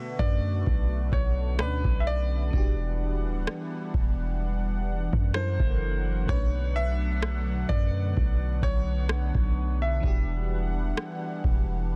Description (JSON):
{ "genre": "contemporary R&B", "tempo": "64 BPM", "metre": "4/4", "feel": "swing 54% on 16ths", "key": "B minor", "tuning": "A4 = 444 Hz", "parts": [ { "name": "clear grand piano", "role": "melody", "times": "0.0-11.7 s", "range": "B4 to E5", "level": "-38 LUFS", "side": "equal", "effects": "digital delay" }, { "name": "FM electric piano with soft pad layer", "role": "accompaniment", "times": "0.0-12.0 s", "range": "B2 to D5", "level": "-41 LUFS", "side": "equal", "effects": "chorus, phaser" }, { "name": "lush unison pad", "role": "sustained chords", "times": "0.0-12.0 s", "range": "D3 to F#5", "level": "-38 LUFS", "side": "equal", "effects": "chorus, phaser, sidechain pumping" }, { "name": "warm 808-style bass", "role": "bass", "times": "0.2-12.0 s", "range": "D1 to F#2", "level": "-30 LUFS", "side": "equal", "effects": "none" }, { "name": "booming analog drum machine", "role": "drums", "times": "0.2-11.6 s", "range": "kick drum, rim click", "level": "-28 LUFS", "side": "equal", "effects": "soft clipping on snare" } ], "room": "little or no reverb", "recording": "dense, heavily limited modern master", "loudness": "-27 LUFS", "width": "mono", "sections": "0.0-12.0 A section", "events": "none", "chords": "0.0 Bm9; 2.5 Em9; 5.3 F#7alt; 6.3 Bm9; 10.0 Em9" }